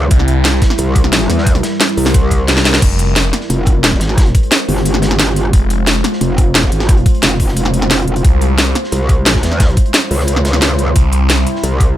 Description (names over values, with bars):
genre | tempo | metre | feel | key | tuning
dark technical drum and bass | 177 BPM | 4/4 | straight | F harmonic minor | A4 = 443 Hz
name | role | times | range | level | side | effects
deep dark ambient pad | sustained chords | 0.0-12.0 s | G3 to C5 | -20 LUFS | equal | chorus, built-in reverb, sidechain pumping
metallic wobble bass | bass | 0.0-12.0 s | F1 to E2 | -15 LUFS | equal | chorus
phased detuned saw bass | bass | 0.1-0.6, 2.8-3.3, 5.5-6.0, 8.2-8.7, 11.0-11.5 s | F1 to C2 | -14 LUFS | equal | phaser, tube saturation, sidechain pumping
crunchy breakbeat drum kit | drums | 0.1-11.9 s | hi-hat, snare drum | -26 LUFS | equal | none
drum and bass drum kit | drums | 0.1-11.9 s | crash cymbal, hi-hat, snare drum | -14 LUFS | equal | none
electronic kick drum | drums | 0.1-11.9 s | none | -11 LUFS | equal | none
room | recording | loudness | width
little or no reverb | none | -10 LUFS | side -13 dB against mid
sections
0.0-2.8 A section; 2.8-12.0 A section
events
drop 0.0-2.8, 2.8-12.0; drum fill 2.5-2.8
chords
0.0 C; 2.8 Fm; 8.2 C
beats
| 0.11 0.45 0.79 1.13 | 1.47 1.80 2.14 2.48 | 2.82 3.16 3.50 3.84 | 4.18 4.52 4.86 5.19 | 5.53 5.87 6.21 6.55 | 6.89 7.23 7.57 7.91 | 8.24 8.58 8.92 9.26 | 9.60 9.94 10.28 10.62 | 10.96 11.30 11.63 11.97